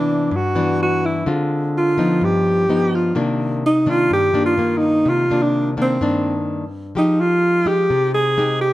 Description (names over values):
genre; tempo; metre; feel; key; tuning
bossa nova; 127 BPM; 4/4; straight; C minor; A4 = 440 Hz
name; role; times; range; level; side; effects
breathy alto saxophone; melody; 0.0-8.7 s; C4 to Ab4; -17 LUFS; right 1 dB; plate reverb
nylon-string guitar; accompaniment; 0.0-8.7 s; G2 to G4; -20 LUFS; left 2 dB; none
room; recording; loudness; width
moderate studio reverb, RT60 0.6 s; dark, warm production; -16 LUFS; side -16 dB against mid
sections
0.0-6.9 A section; 6.9-8.7 B section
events
none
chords
0.0 Cmaj9; 1.3 Dm7b5; 2.2 G7b13; 3.2 Cm9; 6.9 Fm9